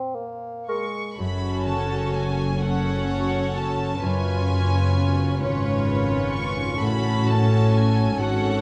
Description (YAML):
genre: classical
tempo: 43 BPM (dotted quarters)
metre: 6/8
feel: rubato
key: F# minor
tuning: A4 = 441 Hz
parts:
  - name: warm bassoon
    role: accompaniment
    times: 0.0-1.2 s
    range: Ab3 to C4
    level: -34 LUFS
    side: equal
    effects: none
  - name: concert harp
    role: arpeggios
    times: 0.0-8.6 s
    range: F#2 to Db5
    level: -30 LUFS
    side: equal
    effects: none
  - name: rich studio violin section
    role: melody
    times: 0.7-8.6 s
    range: C#5 to Db6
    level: -34 LUFS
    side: equal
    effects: none
  - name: concert flute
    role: second line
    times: 0.7-0.9 s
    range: Db6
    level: -37 LUFS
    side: equal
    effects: none
  - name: mellow clarinet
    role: second line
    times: 0.7-0.9 s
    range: Bb4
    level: -34 LUFS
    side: equal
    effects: none
  - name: clear studio violin section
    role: second line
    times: 1.2-8.6 s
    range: A4 to C#5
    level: -33 LUFS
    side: equal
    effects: none
  - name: dark studio viola section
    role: accompaniment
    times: 1.2-8.6 s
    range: C#4 to F#4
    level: -31 LUFS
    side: equal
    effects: none
  - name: dark studio double bass section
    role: bass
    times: 1.2-8.6 s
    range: F#1 to A1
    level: -29 LUFS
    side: equal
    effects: none
  - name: warm studio cello section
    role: bass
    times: 1.2-8.6 s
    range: F#2 to A2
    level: -28 LUFS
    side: equal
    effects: none
room: wet recital hall reverb, RT60 1.4 s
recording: nothing above 10.9 kHz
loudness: -23 LUFS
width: mono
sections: 0.0-1.2 A section; 1.2-8.6 B section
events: none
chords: 0.0 Bbm; 1.2 F#m; 4.0 C#7/F#; 6.8 F#m/A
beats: | 1.18 2.60 | 4.02 5.42 | 6.81 8.19